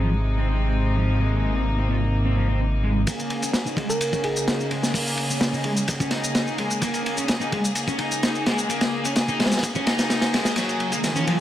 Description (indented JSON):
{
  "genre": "breakbeat, breaks",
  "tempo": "128 BPM",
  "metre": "4/4",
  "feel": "straight",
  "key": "Bb minor",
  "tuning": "A4 = 440 Hz",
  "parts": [
    { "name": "rich chamber string section", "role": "sustained chords", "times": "0.0-11.4 s", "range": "C3 to Ab4", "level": "-28 LUFS", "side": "left 1 dB", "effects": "sidechain pumping" },
    { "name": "thick fuzz guitar", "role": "riff", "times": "0.0-11.3 s", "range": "F3 to Eb4", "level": "-28 LUFS", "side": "equal", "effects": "distortion, tube saturation, low-pass filter, digital delay" },
    { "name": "dark detuned saw bass", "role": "bass", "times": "0.0-3.0 s", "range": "Ab1", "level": "-22 LUFS", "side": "equal", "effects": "none" },
    { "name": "crunchy breakbeat drum kit", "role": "drums", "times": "3.1-11.4 s", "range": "hi-hat, kick drum, ride cymbal, snare drum", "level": "-24 LUFS", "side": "equal", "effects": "high-pass filter on kick, high-pass filter on cymbals, high-pass filter on hats, high-pass filter on snare, high-pass filter on room" },
    { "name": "shaker", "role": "drums", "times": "3.1-11.3 s", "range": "none", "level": "-31 LUFS", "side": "left 1 dB", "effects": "none" },
    { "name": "thumb-piano-like synth pluck", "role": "melody", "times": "3.9-4.7 s", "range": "Ab4 to Bb4", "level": "-28 LUFS", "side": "right 2 dB", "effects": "chorus, small speaker sound, digital delay" },
    { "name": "riser", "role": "sound effects", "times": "10.9-11.4 s", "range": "none", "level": "-26 LUFS", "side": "right 1 dB", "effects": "none" }
  ],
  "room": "light reverb, small room ambience",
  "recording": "vinyl crackle",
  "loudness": "-20 LUFS",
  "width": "side -12 dB against mid",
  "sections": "0.0-3.1 A section; 3.1-11.4 B section",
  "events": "build-up 3.1-11.4; filter sweep on distorted electric guitar 3.1-11.4; drum fill 10.6-11.4; riser 10.9-11.4",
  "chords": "0.0 Ab; 3.1 Bbm7; 10.6 Gbadd9"
}